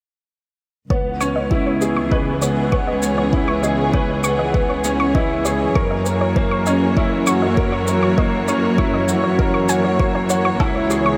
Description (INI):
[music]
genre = piano and strings electronica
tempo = 99 BPM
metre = 4/4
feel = straight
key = C# dorian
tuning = A4 = 440 Hz
[part]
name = dark studio string section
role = sustained chords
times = 0.9-11.2 s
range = E3 to C#5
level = -25 LUFS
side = equal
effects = sidechain pumping
[part]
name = soft round pluck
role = arpeggios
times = 0.9-11.1 s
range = C#5 to C#6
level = -28 LUFS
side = equal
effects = chorus, sidechain pumping, delay
[part]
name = clear upright piano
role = riff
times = 0.9-11.2 s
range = A#3 to B4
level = -23 LUFS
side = equal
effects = ensemble chorus, delay
[part]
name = dark studio cello section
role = bass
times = 0.9-11.2 s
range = C#2 to F#2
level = -25 LUFS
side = equal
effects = sidechain pumping
[part]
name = electronic kick drum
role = drums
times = 0.9-10.7 s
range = none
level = -22 LUFS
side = equal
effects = none
[part]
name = shaker and woodblock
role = drums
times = 1.2-11.0 s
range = none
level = -30 LUFS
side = equal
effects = none
[sound]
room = moderate huge ambient reverb, RT60 8.4 s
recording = dreamy mix soaked in reverb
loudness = -18 LUFS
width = mono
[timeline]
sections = 0.9-11.2 A section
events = none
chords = 0.9 C#m7; 5.8 F#7; 10.6 C#m7